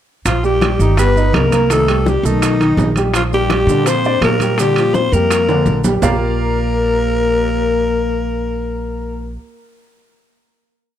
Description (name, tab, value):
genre	Afro-Cuban jazz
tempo	166 BPM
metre	4/4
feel	straight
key	Bb major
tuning	A4 = 439 Hz
part	growling alto saxophone	melody	0.3-9.4 s	Eb4 to C5	-18 LUFS	right 1 dB	none
part	breathy trombone	second line	0.3-9.4 s	Eb3 to C4	-21 LUFS	left 11 dB	none
part	warm baby grand piano	accompaniment	0.3-9.4 s	D3 to F5	-20 LUFS	right 2 dB	none
part	upright bass	bass	0.3-9.4 s	G1 to Bb2	-18 LUFS	right 1 dB	none
part	bongos	percussion	0.3-6.1 s	none	-26 LUFS	left 7 dB	none
part	congas	percussion	0.3-6.1 s	none	-23 LUFS	equal	none
part	maracas	percussion	0.3-6.1 s	none	-29 LUFS	right 19 dB	none
part	timbales	percussion	0.3-6.1 s	none	-23 LUFS	right 6 dB	none
room	light reverb, studio ambience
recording	dry, close 1970s-style studio recording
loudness	-13 LUFS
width	side -10 dB against mid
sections	0.3-6.0 A section; 6.0-8.9 final chord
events	drum fill 5.5-6.0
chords	0.3 Bb5; 1.0 Gaug; 1.7 Cm; 2.4 B7; 3.1 Bb6